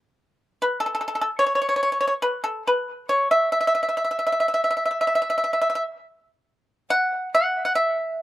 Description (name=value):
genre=chinese traditional, Chinese solo plucked strings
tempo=68-77 BPM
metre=4/4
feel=rubato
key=E zhi mode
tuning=A4 = 439 Hz
part: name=pipa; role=solo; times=0.6-8.2 s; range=A4 to F#5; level=-20 LUFS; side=equal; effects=none
room=little or no reverb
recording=recorded outdoors, with no room sound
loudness=-20 LUFS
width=side -15 dB against mid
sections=0.0-6.9 A section; 6.9-8.2 B section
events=none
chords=none